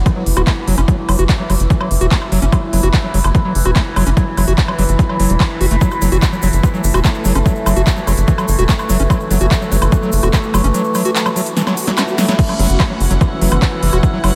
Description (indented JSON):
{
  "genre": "psychedelic trance",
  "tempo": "146 BPM",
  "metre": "4/4",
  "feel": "straight",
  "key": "F# minor",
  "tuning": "A4 = 441 Hz",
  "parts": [
    { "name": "overtone-sweeping drone", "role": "sustained chords", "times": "0.0-14.4 s", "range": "E3 to E4", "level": "-24 LUFS", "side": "equal", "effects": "chorus, built-in reverb, phaser, sidechain pumping" },
    { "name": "tight sequencer bass", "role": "bass", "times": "0.0-14.3 s", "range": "E1 to F#1", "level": "-17 LUFS", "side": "equal", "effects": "none" },
    { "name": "overdriven acid bass", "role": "riff", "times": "0.1-14.3 s", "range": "E3 to F#4", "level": "-23 LUFS", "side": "equal", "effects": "sidechain pumping, analog delay" },
    { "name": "big-room dance drum kit", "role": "drums", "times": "0.1-14.3 s", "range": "crash cymbal, handclaps, hi-hat, snare drum, woodblock", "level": "-24 LUFS", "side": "equal", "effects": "overdrive" },
    { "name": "electronic kick drum", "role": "drums", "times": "0.1-14.1 s", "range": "none", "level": "-17 LUFS", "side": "equal", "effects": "overdrive" },
    { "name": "resonant blip pluck", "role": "second line", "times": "0.4-13.9 s", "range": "A3 to B3", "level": "-38 LUFS", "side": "equal", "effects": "none" },
    { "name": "tube shaker", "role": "percussion", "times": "5.8-12.4 s", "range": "none", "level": "-33 LUFS", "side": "equal", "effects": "none" },
    { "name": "swell", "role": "sound effects", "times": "11.7-12.4 s", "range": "none", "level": "-33 LUFS", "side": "equal", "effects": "none" },
    { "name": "rich chamber string section", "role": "texture", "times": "12.4-14.4 s", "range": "C#4 to F#5", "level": "-28 LUFS", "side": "equal", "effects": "sidechain pumping" }
  ],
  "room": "moderate huge ambient reverb, RT60 6.4 s",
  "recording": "dreamy mix soaked in reverb",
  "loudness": "-15 LUFS",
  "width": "mono",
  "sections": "0.0-12.4 A section; 12.4-14.4 B section",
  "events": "drum fill 11.6-12.4; swell 11.7-12.4; drop 12.4-14.4",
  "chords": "0.0 F#5"
}